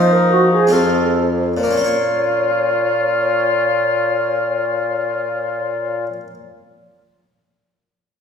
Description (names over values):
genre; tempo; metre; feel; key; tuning
classical, baroque-style sonata movement with continuo; free time; none; none; Bb minor; A4 = 440 Hz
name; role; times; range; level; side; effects
warm oboe; melody; 0.0-6.1 s; Eb4 to F4; -22 LUFS; left 3 dB; none
mellow baroque flute; second line; 0.0-6.1 s; Gb4 to Db5; -19 LUFS; equal; none
harpsichord; accompaniment; 0.0-6.3 s; F2 to Db5; -21 LUFS; left 2 dB; none
warm bassoon; bass; 0.0-6.1 s; F2 to F3; -20 LUFS; equal; none
room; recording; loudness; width
wet recital hall reverb, RT60 1.8 s; heard from further back in the room; -15 LUFS; side -7 dB against mid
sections
0.0-1.6 A section; 1.6-6.7 B section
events
slowing down 0.0-1.6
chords
0.0 F7sus4; 0.7 F7; 1.6 Bbm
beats
free time